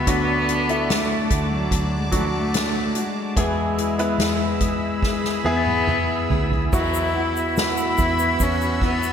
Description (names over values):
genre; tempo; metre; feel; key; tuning
pop ballad; 72 BPM; 4/4; straight; unclear; A4 = 440 Hz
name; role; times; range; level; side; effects
warm cello; melody; 0.0-9.1 s; E3 to E4; -23 LUFS; left 2 dB; ping-pong delay
clear concert grand piano; accompaniment; 0.0-9.1 s; D3 to B4; -27 LUFS; equal; none
sweeping resonant pad; sustained chords; 0.0-9.1 s; F#4 to E6; -29 LUFS; equal; chorus
flamenco guitar; arpeggios; 0.0-9.1 s; D3 to G#4; -31 LUFS; right 1 dB; wide subtle chorus
vintage muted fingered electric bass; bass; 0.0-9.1 s; D2 to E2; -28 LUFS; right 1 dB; none
soft-mallet drum kit; drums; 0.1-9.0 s; crash cymbal, hi-hat, kick drum, ride cymbal, snare drum, toms; -25 LUFS; equal; none
dark French horn section; second line; 6.7-9.1 s; B3; -29 LUFS; right 5 dB; none
egg shaker; percussion; 6.7-9.1 s; none; -36 LUFS; left 10 dB; none
room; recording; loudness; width
moderate lush hall reverb, RT60 2.5 s; bright 1980s-style digital production; -19 LUFS; side -8 dB against mid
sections
0.0-6.7 A section; 6.7-9.1 B section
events
drum fill 5.0-6.7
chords
0.1 D; 3.4 E; 6.7 Esus2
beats
| 0.07 0.89 1.71 2.54 | 3.37 4.19 5.03 5.88 | 6.73 7.57 8.40